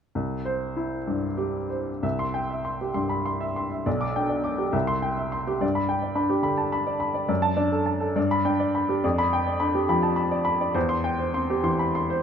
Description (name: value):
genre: classical, romantic character piece for solo piano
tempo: 60-73 BPM (dotted quarters)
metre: 6/8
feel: rubato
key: C major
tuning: A4 = 439 Hz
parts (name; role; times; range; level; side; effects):
- warm upright piano; solo; 0.2-12.2 s; B1 to D6; -23 LUFS; equal; none
room: light reverb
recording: close, detailed microphones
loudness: -23 LUFS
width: side -7 dB against mid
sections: 0.2-2.0 A section; 2.0-12.2 B section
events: none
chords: 0.2 C; 3.9 G/B; 4.7 C; 5.6 G; 7.3 D/F#; 8.2 G; 9.0 G7/F; 10.8 C/E